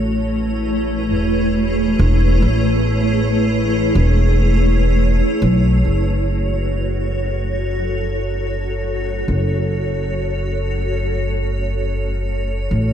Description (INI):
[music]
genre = ambient dub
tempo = 70 BPM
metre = 4/4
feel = swing 57% on 16ths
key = F# minor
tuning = A4 = 440 Hz
[part]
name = granular cloud pad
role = sustained chords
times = 0.0-12.9 s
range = A3 to C#5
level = -20 LUFS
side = equal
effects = built-in reverb
[part]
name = upright bass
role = bass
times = 0.0-12.9 s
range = E1 to B1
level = -18 LUFS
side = equal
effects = tube saturation
[sound]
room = studio ambience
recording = none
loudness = -16 LUFS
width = side -9 dB against mid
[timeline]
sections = 0.0-5.9 A section; 5.9-12.9 B section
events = none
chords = 0.0 Amaj7; 5.9 F#m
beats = 0.71 1.56 | 2.42 3.28 4.14 4.99 | 5.85 6.71 7.57 8.42 | 9.28 10.14 10.99 11.85 | 12.71